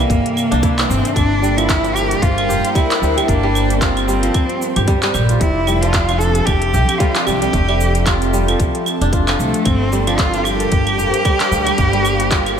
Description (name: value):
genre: organic downtempo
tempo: 113 BPM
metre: 4/4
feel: swing 57% on 16ths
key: G dorian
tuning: A4 = 438 Hz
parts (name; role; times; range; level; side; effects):
- rich cello; melody; 0.0-12.6 s; A3 to A4; -20 LUFS; equal; ping-pong delay
- airy breathy pad; sustained chords; 0.0-12.6 s; C3 to G5; -23 LUFS; right 1 dB; chorus, phaser, sidechain pumping
- kora; arpeggios; 0.0-12.6 s; E3 to G4; -21 LUFS; right 1 dB; digital delay, slapback echo
- upright bass; bass; 0.0-12.6 s; F1 to D2; -19 LUFS; equal; sidechain pumping
- organic electronic drum kit; drums; 0.0-12.6 s; cabasa, claves, handclaps, hi-hat; -22 LUFS; right 1 dB; none
- electronic kick drum; drums; 0.1-12.4 s; none; -18 LUFS; equal; none
room: wet concert hall reverb, RT60 1.8 s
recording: big arena sound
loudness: -13 LUFS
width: side -8 dB against mid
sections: 0.0-12.6 A section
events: none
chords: 0.0 C13; 1.2 Gm11; 5.4 Fmaj9; 9.7 Gm11